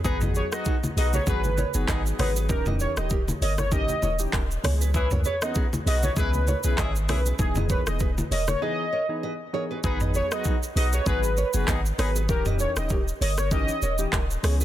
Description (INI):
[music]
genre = afrobeats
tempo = 98 BPM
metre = 4/4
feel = swing 55% on 16ths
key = G# minor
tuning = A4 = 443 Hz
[part]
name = clear horn section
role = second line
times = 0.0-12.1 s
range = B3 to B4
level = -35 LUFS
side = left 3 dB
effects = tape echo
[part]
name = warm analog keys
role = accompaniment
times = 0.0-14.6 s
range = E3 to G#4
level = -33 LUFS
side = left 2 dB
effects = chorus
[part]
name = punchy sub bass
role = bass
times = 0.0-14.6 s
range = D#1 to C#2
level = -26 LUFS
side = equal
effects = none
[part]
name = afro-pop drum kit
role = drums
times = 0.0-14.6 s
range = handclaps, hi-hat, kick drum, rim click, shaker, toms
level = -27 LUFS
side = equal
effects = overdrive
[part]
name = congas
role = percussion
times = 0.0-8.6 s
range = none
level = -33 LUFS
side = left 2 dB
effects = none
[part]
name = warm velvety synth lead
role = melody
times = 0.1-14.0 s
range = G#4 to D#5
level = -30 LUFS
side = equal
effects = chorus, tape echo
[part]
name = nylon-string guitar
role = riff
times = 0.2-14.6 s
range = D#4 to D#5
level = -34 LUFS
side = right 6 dB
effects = tape echo
[sound]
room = digital ambience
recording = dense, heavily limited modern master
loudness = -22 LUFS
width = side -13 dB against mid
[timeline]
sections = 0.0-9.8 A section; 9.8-14.6 A section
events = break 8.6-9.8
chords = 0.0 G#m7; 2.5 D#7b9; 4.6 C#m7; 7.4 Emaj7; 9.8 G#m7; 12.3 D#7b9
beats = | 0.04 0.66 1.27 1.88 | 2.49 3.11 3.72 4.33 | 4.94 5.55 6.17 6.78 | 7.39 8.00 8.62 9.23 | 9.84 10.45 11.06 11.68 | 12.29 12.90 13.51 14.13